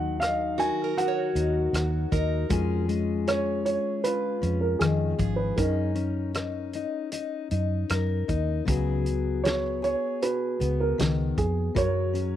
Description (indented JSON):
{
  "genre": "acoustic folk-pop ballad",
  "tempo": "78 BPM",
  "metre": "4/4",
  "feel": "straight",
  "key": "unclear",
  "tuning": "A4 = 439 Hz",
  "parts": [
    { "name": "dark upright piano", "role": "melody", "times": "0.0-12.4 s", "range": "A#3 to G#5", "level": "-28 LUFS", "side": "right 3 dB", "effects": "none" },
    { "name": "fingerpicked steel-string acoustic guitar", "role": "accompaniment", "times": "0.0-12.4 s", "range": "C#3 to A#4", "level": "-29 LUFS", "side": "left 7 dB", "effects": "none" },
    { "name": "vintage muted fingered electric bass", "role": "bass", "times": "0.0-12.4 s", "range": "G#1 to F#2", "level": "-28 LUFS", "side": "right 1 dB", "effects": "none" },
    { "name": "loose indie drum kit", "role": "drums", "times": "0.2-12.3 s", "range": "hi-hat, kick drum, rim click, snare drum", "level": "-30 LUFS", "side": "right 1 dB", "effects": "none" },
    { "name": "picked plugged-in old ladder-braced acoustic guitar", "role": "arpeggios", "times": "0.6-5.9 s", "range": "F#4 to C#5", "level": "-33 LUFS", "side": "right 10 dB", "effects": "none" }
  ],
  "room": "small room ambience",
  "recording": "dry, close 1970s-style studio recording",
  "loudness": "-24 LUFS",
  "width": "side -11 dB against mid",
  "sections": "0.0-8.7 A section; 8.7-12.4 A section",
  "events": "none",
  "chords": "0.0 D#m; 2.5 C#/E#; 5.6 F#6; 8.7 C#7sus4; 11.8 F#add9",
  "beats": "0.21 0.98 1.74 | 2.51 3.28 4.04 4.81 | 5.58 6.35 7.12 7.90 | 8.68 9.45 10.22 10.99 | 11.76"
}